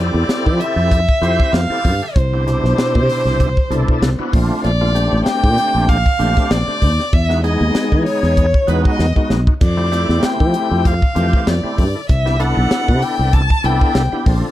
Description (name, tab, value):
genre	electric jazz fusion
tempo	97 BPM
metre	4/4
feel	swing 55% on 16ths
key	F major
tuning	A4 = 440 Hz
part	warm violin	melody	0.0-14.3 s	B4 to A5	-20 LUFS	left 1 dB	none
part	overdriven tonewheel organ	accompaniment	0.0-14.5 s	B2 to C5	-21 LUFS	equal	slow rotary speaker, chorus vibrato
part	fretless electric bass	bass	0.0-14.4 s	A1 to F3	-17 LUFS	equal	none
part	crisp fusion drum kit	drums	0.3-14.4 s	crash cymbal, hi-hat, kick drum, snare drum	-17 LUFS	equal	none
room	light reverb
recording	dark, warm production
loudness	-13 LUFS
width	side -14 dB against mid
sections	0.0-14.5 A section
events	drum fill 9.0-9.6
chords	0.0 Fmaj9; 2.2 Cmaj9; 4.3 Bbmaj9; 7.1 Emaj9; 9.6 Fmaj9; 12.1 Cmaj9